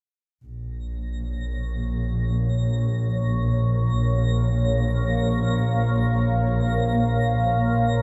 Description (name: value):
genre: ambient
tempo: free time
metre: none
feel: none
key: Bb minor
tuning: A4 = 440 Hz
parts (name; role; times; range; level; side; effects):
- twinkling granular texture; texture; 1.1-8.0 s; Bb6; -40 LUFS; equal; built-in reverb
- shimmering ambient pad; sustained chords; 1.8-8.0 s; Bb3 to F5; -29 LUFS; equal; chorus, built-in reverb, phaser
- dark chamber double bass section; bass; 0.5-8.0 s; Bb1; -24 LUFS; equal; none
room: moderate lush hall reverb, RT60 3.1 s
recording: none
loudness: -23 LUFS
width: mono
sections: 0.5-8.0 A section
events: fade-in on synth texture 0.5-8.0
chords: 0.5 Bbmadd9